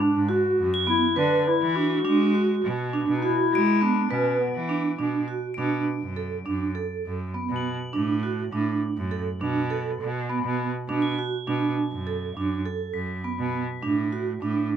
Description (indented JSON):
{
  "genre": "contemporary instrumental, chamber music in an uneven meter",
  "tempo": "102 BPM",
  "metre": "5/4",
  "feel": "straight",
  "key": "B dorian",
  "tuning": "A4 = 440 Hz",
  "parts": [
    { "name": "dark clarinet", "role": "second line", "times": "0.0-4.9 s", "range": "B3 to F#4", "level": "-25 LUFS", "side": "left 7 dB", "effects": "none" },
    { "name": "vibraphone with medium mallets", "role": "arpeggios", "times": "0.0-14.8 s", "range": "B3 to B4", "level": "-26 LUFS", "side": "right 4 dB", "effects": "none" },
    { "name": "clear cello", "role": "bass", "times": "0.1-14.7 s", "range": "F#2 to G#3", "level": "-28 LUFS", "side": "right 2 dB", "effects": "none" },
    { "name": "crotales", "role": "texture", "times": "0.7-14.1 s", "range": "B6 to G#7", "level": "-36 LUFS", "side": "right 1 dB", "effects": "none" }
  ],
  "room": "light reverb",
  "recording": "none",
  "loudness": "-23 LUFS",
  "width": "side -9 dB against mid",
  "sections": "0.0-5.0 A section; 5.0-14.8 B section",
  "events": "none",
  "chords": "0.0 Bm; 5.0 Bm7"
}